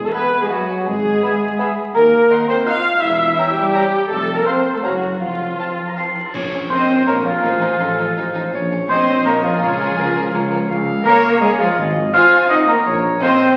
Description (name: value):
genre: cinematic, playful, whimsical film cue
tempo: 166 BPM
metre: 3/4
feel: straight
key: Bb minor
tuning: A4 = 441 Hz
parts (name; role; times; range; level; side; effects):
- celesta; melody; 0.0-13.6 s; F5 to F6; -25 LUFS; equal; none
- rich chamber viola section; accompaniment; 0.0-13.6 s; F4 to F5; -21 LUFS; equal; none
- dark tuba; bass; 0.0-13.2 s; E1 to Eb2; -29 LUFS; equal; none
- rich chamber double bass section; bass; 0.0-13.2 s; G#1 to Gb2; -33 LUFS; equal; none
- mellow silver concert flute; second line; 0.1-13.6 s; F5 to F6; -25 LUFS; equal; none
- rich chamber violin section; second line; 0.1-13.6 s; Ab4 to G#5; -31 LUFS; equal; none
- warm oboe; second line; 0.1-13.6 s; F4 to C6; -26 LUFS; equal; none
- clear bassoon; accompaniment; 0.1-6.1 s; B3 to Eb4; -31 LUFS; equal; none
- mellow French horn section; sustained chords; 0.1-13.6 s; F3 to F4; -24 LUFS; equal; none
- warm chamber cello section; bass; 0.1-13.6 s; F3 to F4; -28 LUFS; equal; none
- rich chamber violin section; melody; 0.2-13.3 s; Bb3 to C6; -33 LUFS; equal; none
- bright clarinet; second line; 0.2-13.6 s; A4 to F5; -28 LUFS; equal; none
- cymbal swell, clash cymbals and concert bass drum; percussion; 4.1-7.0 s; none; -38 LUFS; equal; none
room: wet recital hall reverb, RT60 1.4 s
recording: very old 78 rpm record, vinyl crackle, faint mains hum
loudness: -17 LUFS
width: mono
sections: 0.0-6.3 A section; 6.3-13.6 B section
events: band accent 6.3-6.7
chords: 0.0 E; 0.9 E/G#; 2.0 Cm7b5/Eb; 3.0 Edim7; 4.1 F; 4.8 Gbmaj7; 5.2 F; 6.3 Bbm; 7.4 F7/A; 8.5 Bbm; 9.6 Bbm/Db; 10.7 Db; 11.8 Abadd9; 12.9 Bbm